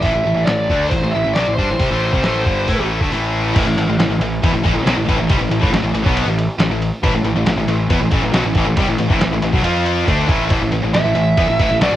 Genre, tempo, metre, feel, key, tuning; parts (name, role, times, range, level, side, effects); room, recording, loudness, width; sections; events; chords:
hard rock; 138 BPM; 4/4; straight; A minor; A4 = 440 Hz
dark smooth lead guitar; melody; 0.0-2.8, 10.9-12.0 s; C5 to E5; -19 LUFS; right 1 dB; overdrive, cassette tape
high-gain distorted guitar; riff; 0.0-12.0 s; G2 to F4; -23 LUFS; right 6 dB; distortion
tight distorted guitar; riff; 0.0-12.0 s; G2 to F4; -21 LUFS; left 7 dB; distortion
fuzz picked electric bass; bass; 0.0-12.0 s; G1 to A2; -20 LUFS; equal; overdrive
lo-fi sampler-style drum kit; drums; 0.0-11.9 s; crash cymbal, hi-hat, kick drum, ride cymbal, snare drum; -19 LUFS; equal
biting overdriven guitar; riff; 3.5-10.5 s; A2 to F4; -24 LUFS; equal
digital ambience; home recording on cassette; -14 LUFS; side -13 dB against mid
0.0-3.6 A section; 3.6-10.5 B section; 10.5-12.0 C section
kick and snare drop out 3.1-3.6, 10.1-10.5; lead electric guitar solo 10.5-12.0
0.0 Am; 9.6 F5; 10.1 A5